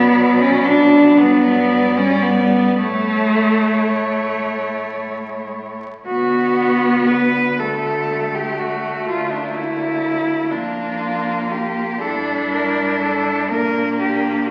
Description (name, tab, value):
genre	classical, lyrical piece for cello ensemble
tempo	36-42 BPM (dotted quarters)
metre	6/8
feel	rubato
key	D major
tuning	A4 = 438 Hz
part	rich cello	melody	0.0-14.5 s	D4 to D5	-24 LUFS	equal	none
part	rich cello	second line	0.0-14.5 s	A3 to F4	-20 LUFS	equal	none
part	clear cello	accompaniment	0.0-14.5 s	F#3 to D4	-24 LUFS	equal	none
part	rich cello	bass	0.0-14.5 s	D2 to B2	-30 LUFS	equal	none
room	wet recital hall reverb, RT60 1.5 s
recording	very old 78 rpm record, vinyl crackle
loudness	-17 LUFS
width	mono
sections	0.0-6.1 A section; 6.1-14.5 B section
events	none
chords	0.0 Bm; 1.2 Gmaj7; 2.8 A; 6.1 D; 9.1 Bb/D; 12.0 Gm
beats	1.18 | 2.78 4.41 | 6.05 7.58 | 9.07 10.52 | 12.00 13.50